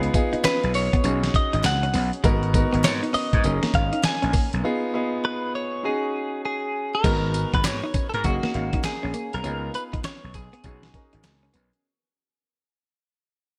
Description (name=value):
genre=R&B, new jack swing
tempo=100 BPM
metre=4/4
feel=swing 64% on 16ths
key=unclear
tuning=A4 = 440 Hz
part: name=warm baby grand piano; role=accompaniment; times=0.0-11.9 s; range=A#3 to E#5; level=-30 LUFS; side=equal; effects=none
part: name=gritty slap bass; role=bass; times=0.0-11.7 s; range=F#1 to G#2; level=-28 LUFS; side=equal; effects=overdrive
part: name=dusty soul sampler-style drum kit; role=drums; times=0.0-11.8 s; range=crash cymbal, handclaps, hi-hat, kick drum, snare drum, tambourine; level=-27 LUFS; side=equal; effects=gated reverb
part: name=direct-recorded clean electric guitar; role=riff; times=0.1-11.7 s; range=G#3 to D#4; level=-34 LUFS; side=equal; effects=lush chorus
part: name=group handclap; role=percussion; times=0.4-11.4 s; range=none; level=-43 LUFS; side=equal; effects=none
part: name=direct-recorded clean electric guitar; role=melody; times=0.5-11.5 s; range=F#4 to G#5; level=-29 LUFS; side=equal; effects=analog chorus
room=light reverb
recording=bright 1980s-style digital production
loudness=-24 LUFS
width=mono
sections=0.0-7.0 A section; 7.0-11.8 B section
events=break 4.6-7.0; fade-out 7.0-11.8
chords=0.0 C#9; 1.0 B6; 2.2 G#m7; 3.4 F#6; 4.6 C#9/B; 5.8 C#sus24; 7.0 G#m7; 8.2 F#6; 9.4 C#9; 10.6 B6